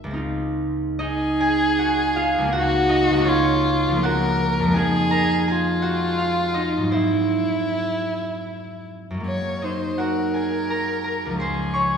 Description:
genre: classical, impressionist duo for violin and harp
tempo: 70-86 BPM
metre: 3/4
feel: rubato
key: Db major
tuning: A4 = 440 Hz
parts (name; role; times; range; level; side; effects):
- concert harp; accompaniment; 0.0-12.0 s; Ab1 to Db6; -21 LUFS; right 1 dB; none
- warm violin; melody; 1.0-12.0 s; E4 to Db5; -24 LUFS; left 2 dB; none
room: wet scoring stage reverb, RT60 1.5 s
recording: heard from further back in the room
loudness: -19 LUFS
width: side -6 dB against mid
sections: 0.2-12.0 A section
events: none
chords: 0.2 Dbmaj9; 2.5 Ebm11/Db; 4.1 Gbmaj7/Db; 4.8 Fm7; 6.9 Abaug7; 9.3 Gb69; 11.4 Dbmaj7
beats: | 0.19 1.00 1.81 | 2.55 3.27 4.05 | 4.77 5.48 6.20 | 6.95 7.73 8.50 | 9.27 10.01 10.72 | 11.43

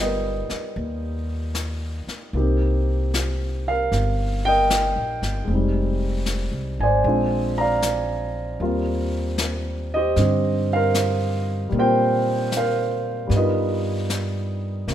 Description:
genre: jazz ballad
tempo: 76 BPM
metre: 4/4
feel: swing 67% on 8ths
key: Eb major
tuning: A4 = 440 Hz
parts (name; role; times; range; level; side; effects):
- warm concert grand piano; accompaniment; 0.0-14.9 s; D3 to Bb5; -22 LUFS; right 1 dB; none
- upright bass; bass; 0.0-14.9 s; F1 to Bb2; -24 LUFS; equal; none
- vintage brush drum kit; drums; 0.5-14.9 s; brushed snare drum, hi-hat, snare drum; -30 LUFS; left 3 dB; none
room: light reverb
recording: minimal, uncompressed stereo recording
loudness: -20 LUFS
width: side -10 dB against mid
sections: 0.0-14.9 A section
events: none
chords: 0.0 G7alt; 2.3 Cm7; 5.5 Fm7; 7.0 Bb9; 8.6 Eb69; 13.3 G7alt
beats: 0.76 1.54 | 2.33 3.12 3.91 4.69 | 5.48 6.26 7.04 7.82 | 8.60 9.38 10.16 10.94 | 11.73 12.51 13.30 14.09 | 14.88

